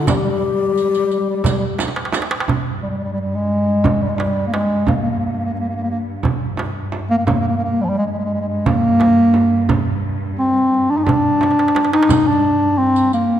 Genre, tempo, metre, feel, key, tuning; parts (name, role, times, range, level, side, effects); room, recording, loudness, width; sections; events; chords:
Turkish makam ensemble; 174 BPM (eighths); 7/8; straight; G makam kurdi; A4 = 440 Hz
mellow bass clarinet; melody; 0.0-13.4 s; F3 to Eb4; -16 LUFS; equal
breathy mellow low ney; second line; 0.0-1.8 s; G4; -19 LUFS; left 8 dB
darbuka; percussion; 0.1-12.9 s; -22 LUFS; right 4 dB
frame drum; percussion; 0.1-12.3 s; -24 LUFS; right 2 dB
riq; percussion; 0.1-2.3, 12.1-13.2 s; -29 LUFS; right 5 dB
warm studio cello section; drone; 2.5-13.4 s; G2; -25 LUFS; equal
wet concert hall reverb, RT60 2.0 s; dark, warm production; -15 LUFS; side -10 dB against mid
0.0-2.5 A section; 2.5-13.4 B section
drum fill 1.8-2.5, 11.4-12.1